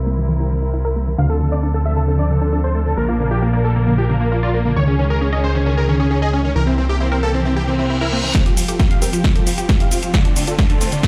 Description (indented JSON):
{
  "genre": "uplifting trance",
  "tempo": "134 BPM",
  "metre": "4/4",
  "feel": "straight",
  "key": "F major",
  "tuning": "A4 = 442 Hz",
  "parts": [
    { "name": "rich symphonic string section", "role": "sustained chords", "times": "0.0-11.1 s", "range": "D3 to Bb4", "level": "-29 LUFS", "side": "equal", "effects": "sidechain pumping" },
    { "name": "unison pluck", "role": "arpeggios", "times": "0.0-11.1 s", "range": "D3 to F5", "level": "-26 LUFS", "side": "equal", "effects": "sidechain pumping, tape echo" },
    { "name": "fat analog bass", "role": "bass", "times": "0.0-8.3 s", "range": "Bb1 to D2", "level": "-20 LUFS", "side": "equal", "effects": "sidechain pumping" },
    { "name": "supersaw chords", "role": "melody", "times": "1.2-11.1 s", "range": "Bb3 to F5", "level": "-24 LUFS", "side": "equal", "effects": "sidechain pumping, low-pass filter, tape echo" },
    { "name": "reverse cymbal and riser", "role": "sound effects", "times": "7.7-11.1 s", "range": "none", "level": "-31 LUFS", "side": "equal", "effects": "none" },
    { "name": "electronic kick drum", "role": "drums", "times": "8.3-11.1 s", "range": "none", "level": "-18 LUFS", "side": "equal", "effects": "overdrive" },
    { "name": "punchy analog drum machine", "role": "drums", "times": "8.3-11.1 s", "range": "hi-hat, shaker, snare drum", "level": "-25 LUFS", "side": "equal", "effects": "overdrive, low-pass filter on snare, sidechain pumping on hats, low-pass filter on hats, sidechain pumping on perc, low-pass filter on perc, low-pass filter on room" }
  ],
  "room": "digital ambience",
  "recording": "played on a big sound system in a bare room, stone room reverb, low-pass filter",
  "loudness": "-17 LUFS",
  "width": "mono",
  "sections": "0.0-8.3 A section; 8.3-11.1 B section",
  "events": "filter sweep on synth pluck 0.0-8.3; filter sweep 0.0-8.3; reverse cymbal 7.7-8.3; build-up 8.3-11.1; drum fill 8.3-11.1; filter sweep on supersaw synth 8.3-11.1",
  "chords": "0.0 C7; 1.2 Dm7; 3.0 Bb; 4.8 Dbsus2; 6.6 C7; 8.3 Fsus2; 10.1 Dm7",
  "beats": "0.29 0.74 | 1.18 1.63 2.08 2.53 | 2.98 3.42 3.87 4.32 | 4.77 5.21 5.66 6.11 | 6.56 7.00 7.45 7.90 | 8.35 8.80 9.24 9.69 | 10.14 10.59 11.03"
}